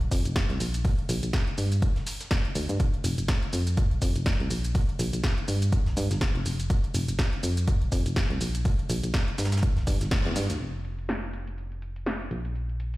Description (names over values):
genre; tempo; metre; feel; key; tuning
piano house; 123 BPM; 4/4; swing 57% on 16ths; unclear; A4 = 444 Hz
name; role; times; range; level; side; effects
solid FM bass; bass; 0.0-13.0 s; F1 to G2; -28 LUFS; equal; sidechain pumping
punchy analog drum machine; drums; 0.0-13.0 s; hi-hat, shaker, snare drum; -33 LUFS; equal; low-pass filter on hats, low-pass filter on perc, low-pass filter on snare, low-pass filter on room
breakbeat sampler-style drum kit; drums; 0.1-10.6 s; hi-hat, snare drum; -43 LUFS; equal; none
electronic kick drum; drums; 0.1-10.2 s; none; -26 LUFS; equal; none
room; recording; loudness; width
digital ambience; played on a big sound system in a bare room, stone room reverb; -24 LUFS; side -18 dB against mid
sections
0.0-10.6 A section; 10.6-13.0 B section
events
band accent 10.1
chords
none